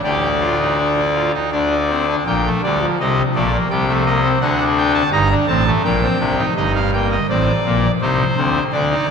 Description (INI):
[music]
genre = classical, baroque-style 3-part fugue for pipe organ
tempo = 83 BPM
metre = 3/4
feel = straight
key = G minor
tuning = A4 = 441 Hz
[part]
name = pipe organ, trumpet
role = solo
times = 0.0-9.1 s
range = G1 to Bb5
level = -15 LUFS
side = left 1 dB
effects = none
[sound]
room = wet cathedral reverb, RT60 4.5 s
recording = none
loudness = -15 LUFS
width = side -6 dB against mid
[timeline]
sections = 0.0-2.3 A section; 2.3-6.6 B section; 6.6-9.1 A section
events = none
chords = 0.1 Dsus4; 1.5 Csus2/D; 2.3 Gm/Bb; 3.7 Am7b5/C; 4.4 D; 5.8 Gm/Bb; 6.6 Ebmaj7/G; 8.0 Cmadd9